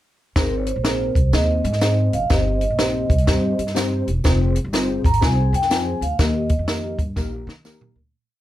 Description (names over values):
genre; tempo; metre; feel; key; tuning
uptempo 1960s-style soul; 123 BPM; 4/4; swing 64% on 8ths; Ab major; A4 = 441 Hz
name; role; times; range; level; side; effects
vibraphone with soft mallets; melody; 0.4-7.0 s; Bb4 to Bb5; -24 LUFS; right 2 dB; none
tine electric piano; accompaniment; 0.4-8.0 s; G2 to C5; -26 LUFS; left 2 dB; ensemble chorus
upright bass; bass; 0.4-8.1 s; Fb1 to Eb3; -22 LUFS; equal; none
compact cocktail drum kit; drums; 0.4-8.0 s; hi-hat, kick drum, snare drum, toms; -21 LUFS; equal; none
tambourine; percussion; 0.4-7.8 s; none; -38 LUFS; right 4 dB; none
room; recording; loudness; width
light reverb; dark, warm production; -17 LUFS; side -14 dB against mid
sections
0.4-8.1 verse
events
fade-out 6.2-8.1; drum fill 7.2-8.1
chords
0.4 Ab; 2.3 Cm/G; 4.2 Fm; 6.2 Eb